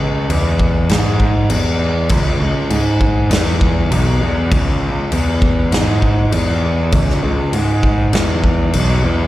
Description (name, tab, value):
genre	stoner and doom metal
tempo	100 BPM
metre	4/4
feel	straight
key	C# minor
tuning	A4 = 442 Hz
part	fuzz picked electric bass	bass	0.0-9.3 s	B1 to G#2	-15 LUFS	equal	overdrive
part	big rock drum kit	drums	0.3-8.9 s	crash cymbal, kick drum, snare drum	-18 LUFS	equal	none
room	little or no reverb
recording	live gig heard through the venue's PA, recital hall reverb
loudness	-13 LUFS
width	side -15 dB against mid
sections	0.0-9.3 A section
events	none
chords	none